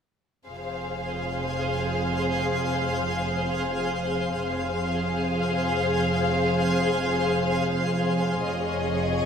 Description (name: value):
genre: cinematic, suspense film score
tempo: free time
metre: none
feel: none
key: F minor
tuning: A4 = 440 Hz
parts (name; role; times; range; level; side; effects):
- dark studio violin section; melody; 0.5-9.3 s; Eb5 to F5; -30 LUFS; left 2 dB; none
- warm studio violin section; second line; 0.5-9.3 s; Ab4 to Db5; -31 LUFS; left 4 dB; none
- twinkling granular texture; sustained chords; 1.1-9.3 s; Ab4 to F5; -29 LUFS; left 1 dB; built-in reverb
- dark studio double bass section; bass; 0.5-9.3 s; F1; -33 LUFS; right 4 dB; none
- warm studio cello section; bass; 0.5-9.3 s; F2; -29 LUFS; right 2 dB; none
room: wet recital hall reverb, RT60 1.3 s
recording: none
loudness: -23 LUFS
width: side -7 dB against mid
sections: 0.5-9.3 A section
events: none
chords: 0.5 Fm; 8.5 Dbadd9/F